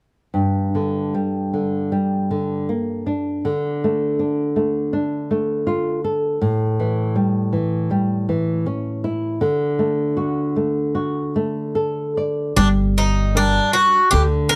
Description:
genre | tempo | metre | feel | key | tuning
fado-style ballad | 73-82 BPM | 4/4 | rubato | G harmonic minor | A4 = 440 Hz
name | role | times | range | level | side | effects
nylon-string guitar | accompaniment | 0.3-14.6 s | G2 to D5 | -22 LUFS | equal | none
Irish bouzouki | melody | 12.6-14.6 s | D4 to Bb4 | -18 LUFS | equal | none
upright bass | bass | 12.6-14.6 s | G1 to D2 | -21 LUFS | equal | none
room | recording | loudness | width
little or no reverb | close, detailed microphones | -20 LUFS | mono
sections
0.3-12.6 A section; 12.6-14.6 B section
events
none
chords
0.3 G5; 3.5 Dm; 6.4 A7; 9.4 D; 12.6 Gm

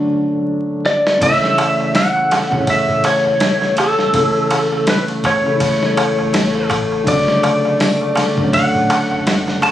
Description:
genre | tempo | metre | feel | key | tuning
trip hop | 82 BPM | 4/4 | swing 57% on 16ths | unclear | A4 = 440 Hz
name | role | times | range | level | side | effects
felt-muted upright piano | accompaniment | 0.0-9.7 s | C#3 to E4 | -20 LUFS | equal | tremolo, tape echo
clean lap steel guitar | melody | 0.9-9.7 s | A4 to A5 | -16 LUFS | equal | vintage 12-bit sampler grit, tape echo
dusty soul sampler-style drum kit | drums | 0.9-9.7 s | hi-hat, kick drum, ride cymbal, snare drum | -21 LUFS | equal | high-pass filter on cymbals, studio ambience, high-pass filter on snare, high-pass filter on hats, high-pass filter on kick
warm chamber string section | sustained chords | 1.2-9.7 s | A3 | -22 LUFS | left 2 dB | none
soft dub sub bass | bass | 1.2-9.7 s | E1 to B1 | -32 LUFS | equal | tube saturation
darbuka | percussion | 1.2-9.7 s | none | -22 LUFS | right 2 dB | none
room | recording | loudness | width
light reverb, small room ambience | recorded on a phone in the room, studio ambience, vinyl crackle, compression | -13 LUFS | side -12 dB against mid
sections
0.0-1.2 A section; 1.2-9.7 B section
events
break 0.0-1.2; filter sweep on felt piano 0.0-1.2; drum fill 0.9-1.2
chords
0.0 Bm7 (rootless); 1.2 A; 7.1 Bm7 (rootless)

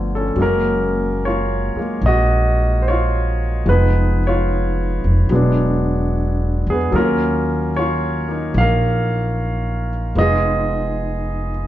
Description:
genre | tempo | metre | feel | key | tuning
jazz ballad | 74 BPM | 4/4 | swing 68% on 8ths | Eb minor | A4 = 440 Hz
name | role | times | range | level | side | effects
warm concert grand piano | accompaniment | 0.0-11.7 s | D3 to F5 | -19 LUFS | equal | none
upright bass | bass | 0.0-11.7 s | E1 to E2 | -18 LUFS | equal | none
room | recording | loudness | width
moderate large studio reverb, RT60 1.0 s | band playing live in one room, nothing above 7.6 kHz | -16 LUFS | side -13 dB against mid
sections
0.0-11.7 A section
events
none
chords
0.4 Gbmaj9; 3.7 Fm7b5; 5.3 E9; 6.9 Ebm9; 10.2 Fm7b5

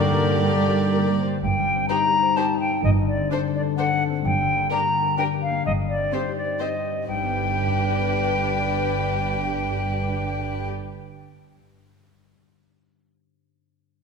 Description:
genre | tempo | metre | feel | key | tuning
cinematic, playful, whimsical film cue | 127 BPM | 3/4 | straight | unclear | A4 = 440 Hz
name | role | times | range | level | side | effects
warm chamber violin section | melody | 0.0-10.7 s | Bb4 to D5 | -32 LUFS | left 5 dB | none
silver concert flute | second line | 0.0-10.7 s | Bb4 to Bb5 | -24 LUFS | left 1 dB | none
warm chamber violin section | second line | 0.0-10.7 s | G4 to Bb4 | -33 LUFS | left 3 dB | none
warm clarinet | second line | 0.0-1.2 s | D4 to Eb4 | -36 LUFS | equal | none
warm oboe | second line | 0.0-1.2 s | G4 | -32 LUFS | equal | none
mellow bassoon | accompaniment | 0.0-1.2 s | D3 | -29 LUFS | right 1 dB | none
warm studio viola section | accompaniment | 0.0-10.7 s | Bb3 to Eb4 | -34 LUFS | right 2 dB | none
concert harp | arpeggios | 0.0-11.6 s | G2 to D5 | -27 LUFS | left 9 dB | none
dark chamber cello section | bass | 0.0-10.7 s | G2 to G3 | -28 LUFS | right 6 dB | none
warm chamber double bass section | bass | 0.0-10.7 s | G1 to G2 | -28 LUFS | right 4 dB | none
warm French horn section | sustained chords | 0.4-1.1 s | G4 to Bb4 | -38 LUFS | left 8 dB | none
room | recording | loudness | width
wet scoring stage reverb, RT60 1.9 s | minimal, uncompressed stereo recording | -20 LUFS | side -5 dB against mid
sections
0.0-1.4 A section; 1.4-7.1 B section; 7.1-9.9 C section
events
none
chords
0.0 Gm; 1.4 Cm/G; 2.8 D7(no3)/G; 4.2 Gm; 5.7 Cm/G; 7.1 G

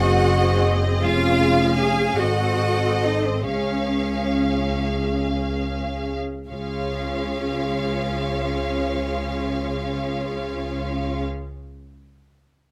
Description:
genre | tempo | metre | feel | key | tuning
classical, slow romantic movement for string orchestra | 37-60 BPM (dotted quarters) | 6/8 | rubato | Db major | A4 = 435 Hz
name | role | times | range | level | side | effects
clear studio violin section | melody | 0.0-11.2 s | Eb5 to F5 | -31 LUFS | equal | none
clear studio violin section | second line | 0.0-11.2 s | C5 to Ab5 | -34 LUFS | equal | none
rich studio viola section | accompaniment | 0.0-11.2 s | C4 to A4 | -29 LUFS | equal | none
rich studio cello section | bass | 0.0-11.2 s | C4 to Ab4 | -28 LUFS | equal | none
rich studio double bass section | bass | 0.0-11.2 s | F1 to Db2 | -27 LUFS | equal | none
room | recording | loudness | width
little or no reverb | close, detailed microphones | -23 LUFS | mono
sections
0.0-6.5 A section; 6.5-12.4 B section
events
slowing down 0.0-6.5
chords
0.0 Ab7/Gb; 1.0 Db/F; 2.2 Ab7b9; 3.5 Db

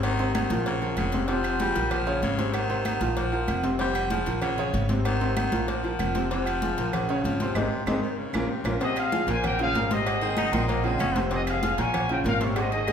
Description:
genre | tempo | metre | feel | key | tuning
latin, salsa | 191 BPM | 4/4 | straight | unclear | A4 = 440 Hz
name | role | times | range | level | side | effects
raspy baritone saxophone | second line | 0.0-11.2 s | Bb2 to Eb4 | -31 LUFS | left 4 dB | none
clear baby grand piano | accompaniment | 0.0-12.9 s | Bb2 to Db5 | -29 LUFS | equal | none
upright bass | bass | 0.0-12.9 s | F1 to Bb1 | -30 LUFS | equal | none
agogo bells and timbales | percussion | 0.0-12.9 s | none | -33 LUFS | right 7 dB | none
claves | percussion | 0.0-12.9 s | none | -42 LUFS | right 5 dB | none
congas | percussion | 0.0-12.9 s | none | -33 LUFS | equal | none
cowbell and bongos | percussion | 0.0-12.9 s | none | -36 LUFS | left 4 dB | none
warm trumpet section | melody | 8.8-12.9 s | F4 to Ab5 | -28 LUFS | left 2 dB | none
room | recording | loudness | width
wet recital hall reverb, RT60 1.4 s | recorded in a church or concert hall | -23 LUFS | side -8 dB against mid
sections
0.0-8.8 A section; 8.8-12.9 B section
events
band accent 7.6-8.8; drum fill 8.0-8.8, 12.6-12.9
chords
0.0 Ab; 0.7 Bbm; 1.3 Fm; 1.9 Bbm; 2.5 Ab; 3.2 Bb5; 3.8 Fm; 4.4 Bbm; 5.0 Ab; 5.7 Bb5; 6.3 Fm; 6.9 Bbm; 7.6 Ab; 8.2 Bbm; 8.8 Fm; 9.4 Bbm; 10.1 Ab; 10.7 Fm; 11.9 Bbm

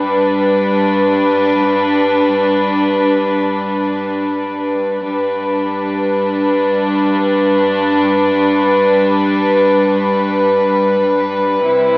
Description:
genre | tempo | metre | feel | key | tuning
hip hop | free time | none | none | G major | A4 = 440 Hz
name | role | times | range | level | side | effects
dark chamber string section | solo | 0.0-12.0 s | G2 to B4 | -12 LUFS | equal | none
room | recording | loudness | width
moderate lush hall reverb, RT60 2.7 s | AM radio sound | -12 LUFS | side -26 dB against mid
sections
0.0-5.0 A section; 5.0-12.0 B section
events
none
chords
0.0 G

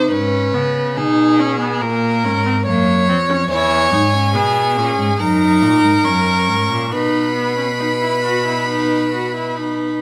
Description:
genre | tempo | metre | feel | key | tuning
classical, baroque-style fugue for string quartet | 68-71 BPM | 4/4 | straight | B major from 3.5 s | A4 = 435 Hz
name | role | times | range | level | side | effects
rich violin | second line | 0.0-10.0 s | G#4 to Db5 | -21 LUFS | equal | none
clear viola | accompaniment | 0.0-10.0 s | Bb3 to F#4 | -21 LUFS | equal | none
clear cello | bass | 0.0-10.0 s | E2 to Db3 | -23 LUFS | equal | none
clear violin | melody | 3.5-10.0 s | G#5 to C#6 | -24 LUFS | equal | none
room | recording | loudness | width
wet large studio reverb, RT60 1.3 s | none | -16 LUFS | mono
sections
0.0-10.0 A section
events
none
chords
0.1 Db5/Ab; 1.8 Gb; 3.5 C#m/E; 5.2 F#; 6.9 B

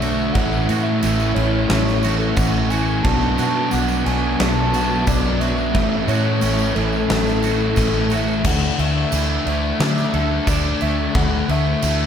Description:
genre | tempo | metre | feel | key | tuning
rock, shoegaze and dream pop | 89 BPM | 4/4 | straight | unclear | A4 = 440 Hz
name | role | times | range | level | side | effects
breathy flute-like synth lead | melody | 0.0-12.1 s | A4 to A5 | -25 LUFS | equal | chorus, ping-pong delay
twangy electric guitar | arpeggios | 0.0-12.1 s | E3 to A4 | -29 LUFS | right 8 dB | ensemble chorus, ping-pong delay
overdriven electric guitar | riff | 0.0-8.4 s | A2 to F#4 | -24 LUFS | right 10 dB | reverse reverb
thick fuzz guitar | riff | 0.0-12.1 s | A2 to D4 | -22 LUFS | left 7 dB | distortion, analog chorus
vintage muted fingered electric bass | bass | 0.0-12.1 s | A1 to D3 | -22 LUFS | equal | none
huge arena drum kit | drums | 0.0-12.0 s | crash cymbal, kick drum, snare drum | -23 LUFS | equal | none
tambourine | percussion | 0.0-12.0 s | none | -38 LUFS | right 10 dB | none
room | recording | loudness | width
moderate plate reverb, RT60 1.7 s, studio reverb | dreamy mix soaked in reverb | -16 LUFS | side -8 dB against mid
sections
0.0-8.4 A section; 8.4-12.1 B section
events
none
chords
0.3 A6; 3.0 Bm7; 5.7 A6; 8.4 Dsus2

